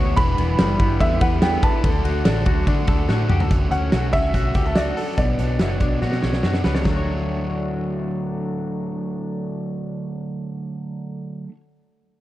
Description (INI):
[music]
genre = jangly indie pop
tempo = 144 BPM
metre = 4/4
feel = straight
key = D major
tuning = A4 = 440 Hz
[part]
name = crunchy overdriven guitar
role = accompaniment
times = 0.0-11.6 s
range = B2 to C#5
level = -28 LUFS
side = right 4 dB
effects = tube saturation
[part]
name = phased analog pad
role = sustained chords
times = 0.0-3.5 s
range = F#3 to C#5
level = -32 LUFS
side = equal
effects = none
[part]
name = direct-recorded clean electric guitar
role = arpeggios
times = 0.0-11.6 s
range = B2 to C#5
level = -28 LUFS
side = left 5 dB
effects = lush chorus, tape echo
[part]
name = vintage muted fingered electric bass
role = bass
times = 0.0-11.5 s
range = E1 to D3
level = -23 LUFS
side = equal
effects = none
[part]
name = clear upright piano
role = melody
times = 0.2-6.4 s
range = D5 to B5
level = -26 LUFS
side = right 1 dB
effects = tape echo, plate reverb
[part]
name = big rock drum kit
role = drums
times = 0.2-7.0 s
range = hi-hat, kick drum, ride cymbal, snare drum, toms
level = -21 LUFS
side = equal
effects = none
[sound]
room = light reverb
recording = dark, warm production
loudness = -19 LUFS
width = side -15 dB against mid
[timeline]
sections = 0.0-3.5 A section; 3.5-6.9 B section; 6.9-10.2 C section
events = drum fill 3.1-3.5, 6.0-6.9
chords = 0.2 Em7; 1.8 D; 3.5 Dmaj7; 5.2 Bmadd9; 6.9 Dmaj7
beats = | 0.18 0.59 1.01 1.43 | 1.84 2.26 2.68 3.09 | 3.51 3.93 4.34 4.76 | 5.18 5.60 6.02 6.43 | 6.85 7.27 7.69 8.11 | 8.53 8.94 9.36 9.78